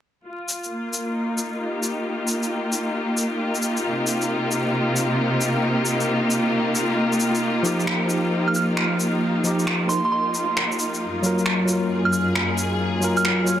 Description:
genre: future garage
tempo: 134 BPM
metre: 4/4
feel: swing 66% on 16ths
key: unclear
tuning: A4 = 440 Hz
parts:
  - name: clear symphonic string section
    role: sustained chords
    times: 0.3-13.6 s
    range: Gb2 to Ab4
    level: -22 LUFS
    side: equal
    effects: vintage 12-bit sampler grit, low-pass filter
  - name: electronic shaker and finger snaps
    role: drums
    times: 0.5-13.6 s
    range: none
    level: -26 LUFS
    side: equal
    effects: overdrive, soft clipping on snare
  - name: tine electric piano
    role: accompaniment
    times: 7.6-13.6 s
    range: F3 to Db5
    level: -23 LUFS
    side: equal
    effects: medium stereo tremolo, vintage 12-bit sampler grit, digital delay
  - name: soft synth bell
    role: melody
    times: 8.5-13.6 s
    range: C6 to F6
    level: -26 LUFS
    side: right 4 dB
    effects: chorus, vintage 12-bit sampler grit, tape echo
room: light reverb, digital ambience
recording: dense, heavily limited modern master, vinyl crackle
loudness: -20 LUFS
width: side -10 dB against mid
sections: 0.3-13.6 A section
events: none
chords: 0.3 Ebadd9/Bb; 3.8 Cm7; 7.4 Ebadd9; 11.0 Gbmaj7

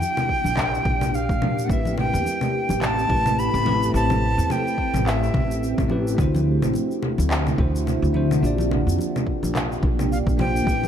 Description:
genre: sunset chillout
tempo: 107 BPM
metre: 4/4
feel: swing 57% on 16ths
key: unclear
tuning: A4 = 441 Hz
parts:
  - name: breathy bright jazz flute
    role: melody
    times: 0.0-5.9, 10.1-10.9 s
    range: E5 to B5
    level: -25 LUFS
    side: equal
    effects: digital delay
  - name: shimmering ambient pad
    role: sustained chords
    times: 0.0-10.9 s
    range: D3 to G4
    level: -28 LUFS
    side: right 1 dB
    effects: chorus, built-in reverb, phaser
  - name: electronic shaker, congas and handclaps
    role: drums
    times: 0.0-10.9 s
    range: none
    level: -27 LUFS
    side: left 1 dB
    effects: none
  - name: congas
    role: percussion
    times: 0.0-10.9 s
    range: none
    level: -32 LUFS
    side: left 2 dB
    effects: none
  - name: electronic kick drum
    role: drums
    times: 0.3-10.8 s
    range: none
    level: -25 LUFS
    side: equal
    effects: none
  - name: upright bass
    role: bass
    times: 0.4-10.9 s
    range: A1 to Bb2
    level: -24 LUFS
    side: equal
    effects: none
  - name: bell-like tine electric piano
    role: accompaniment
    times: 1.7-10.9 s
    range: A3 to D5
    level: -27 LUFS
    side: moving between left 3 dB and right 4 dB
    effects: auto-pan, ping-pong delay
room: light reverb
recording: dark, warm production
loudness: -19 LUFS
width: side -9 dB against mid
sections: 0.0-10.9 A section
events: none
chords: 0.0 Bb6; 1.7 Am9; 6.2 D9; 8.4 Bb6

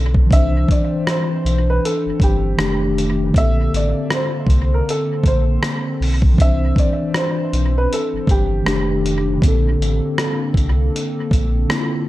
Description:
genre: lo-fi hip hop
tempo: 79 BPM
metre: 4/4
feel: swing 60% on 16ths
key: unclear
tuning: A4 = 440 Hz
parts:
  - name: mellow tine electric piano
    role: accompaniment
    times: 0.0-12.1 s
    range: D3 to C5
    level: -22 LUFS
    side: left 1 dB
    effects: medium stereo tremolo, cassette tape, dub echo
  - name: hollow soft pad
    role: sustained chords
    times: 0.0-12.1 s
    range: D3 to C5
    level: -28 LUFS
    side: left 1 dB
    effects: chorus
  - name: sub bass with octave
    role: bass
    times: 0.0-11.7 s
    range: F1 to C2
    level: -19 LUFS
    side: equal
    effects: none
  - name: dusty soul sampler-style drum kit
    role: drums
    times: 0.1-11.9 s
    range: hi-hat, kick drum, rim click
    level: -18 LUFS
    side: equal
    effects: none
  - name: warm upright piano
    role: melody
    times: 0.3-8.9 s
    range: G4 to E5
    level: -24 LUFS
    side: right 1 dB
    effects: dub echo
room: digital ambience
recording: echo-heavy mix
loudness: -15 LUFS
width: side -16 dB against mid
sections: 0.0-12.1 A section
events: none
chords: 0.3 Cmaj9; 2.6 F13; 3.3 Bbmaj9; 6.4 Cmaj9; 8.7 F13; 9.4 Bbmaj9

